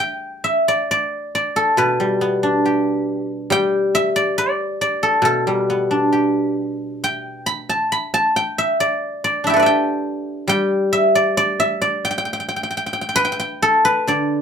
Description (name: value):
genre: chinese traditional, Chinese solo plucked strings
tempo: 63-72 BPM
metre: 2/4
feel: rubato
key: G gong mode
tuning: A4 = 439 Hz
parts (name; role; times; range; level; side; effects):
- guzheng; solo; 0.0-14.4 s; B2 to B5; -16 LUFS; equal; none
room: moderate studio reverb, RT60 0.5 s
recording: none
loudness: -16 LUFS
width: side -7 dB against mid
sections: 0.0-14.1 A section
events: none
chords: none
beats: 0.89 | 1.78 2.65 | 3.52 4.38 | 5.24 6.13 | 7.03 7.92 | 8.80 9.66 | 10.50 11.36 | 12.24 13.16 | 14.09